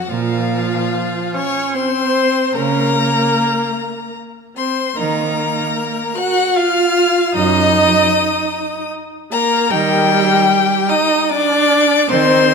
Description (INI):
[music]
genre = classical, slow romantic movement for string quartet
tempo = 76 BPM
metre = 3/4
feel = rubato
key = Bb minor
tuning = A4 = 440 Hz
[part]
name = clear violin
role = melody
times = 0.0-12.5 s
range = F5 to Gb6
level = -19 LUFS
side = left 7 dB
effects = none
[part]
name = rich violin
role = second line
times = 0.0-12.5 s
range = F4 to Gb5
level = -19 LUFS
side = left 3 dB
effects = none
[part]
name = warm viola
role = accompaniment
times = 0.0-12.5 s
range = F3 to Gb4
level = -18 LUFS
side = right 3 dB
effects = none
[part]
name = rich cello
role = bass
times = 0.1-12.5 s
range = Gb2 to Eb3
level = -20 LUFS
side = right 5 dB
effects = none
[sound]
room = wet scoring stage reverb, RT60 2.0 s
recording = none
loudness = -13 LUFS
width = side -5 dB against mid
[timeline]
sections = 0.1-12.5 A section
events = none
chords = 0.1 Bb5; 2.5 Bbm/Db; 5.0 Eb5; 7.3 Ebm/Gb; 9.7 Eb